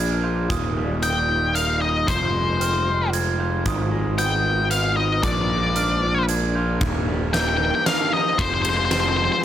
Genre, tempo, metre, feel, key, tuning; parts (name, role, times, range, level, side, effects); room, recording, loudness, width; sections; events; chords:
post-rock; 114 BPM; 3/4; straight; Eb major; A4 = 439 Hz
shimmering ambient pad; sustained chords; 0.0-9.4 s; F3 to Eb5; -32 LUFS; right 1 dB; chorus, built-in reverb
electric guitar through a small old amp; arpeggios; 0.0-9.4 s; Eb2 to F4; -28 LUFS; equal; slapback echo
glockenspiel with soft plastic mallets; arpeggios; 0.0-6.8 s; Eb6 to Ab6; -32 LUFS; right 7 dB; slapback echo
fuzz picked electric bass; bass; 0.0-9.3 s; Eb1 to Bb1; -24 LUFS; equal; overdrive
huge arena drum kit; drums; 0.5-9.0 s; hi-hat, kick drum, ride cymbal, snare drum; -27 LUFS; right 1 dB
octave-fuzz lead guitar; melody; 1.0-9.4 s; C5 to G5; -23 LUFS; left 3 dB; distortion, slapback echo
light reverb, small room ambience; -19 LUFS; side -11 dB against mid
0.0-6.8 A section; 6.8-9.4 B section
0.5 Ebadd9; 2.1 Fm; 3.7 Abm; 5.2 Bb; 6.8 Ebadd9; 8.4 Fm